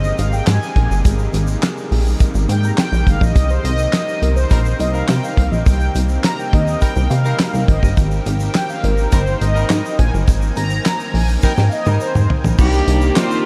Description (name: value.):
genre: early-eighties boogie funk.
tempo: 104 BPM.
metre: 4/4.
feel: straight.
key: unclear.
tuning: A4 = 440 Hz.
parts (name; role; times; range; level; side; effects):
mellow synth brass; accompaniment; 0.0-13.5 s; Bb3 to Bb5; -26 LUFS; equal; chorus.
lush unison pad; sustained chords; 0.0-13.5 s; C3 to Ab5; -29 LUFS; equal; chorus.
plucky analog bass; bass; 0.0-13.1 s; G1 to C3; -19 LUFS; equal; none.
egg shaker; percussion; 0.0-13.4 s; none; -40 LUFS; equal; none.
damped 70s drum kit; drums; 0.2-13.3 s; crash cymbal, handclaps, hi-hat, kick drum, snare drum, toms; -20 LUFS; equal; none.
warm horn section; second line; 4.5-13.4 s; G3 to C5; -31 LUFS; equal; diffuse ambient delay.
breathy alto saxophone; melody; 12.6-13.5 s; F4 to G4; -23 LUFS; equal; none.
room: moderate huge ambient reverb, RT60 7.3 s.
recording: dreamy mix soaked in reverb.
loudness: -16 LUFS.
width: mono.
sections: 0.0-12.6 A section.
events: analog polysynth solo 0.0-12.6; drum fill 11.4-12.6.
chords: 0.0 Abmaj9; 3.4 Cm7; 7.7 Abmaj9; 12.6 Cm9.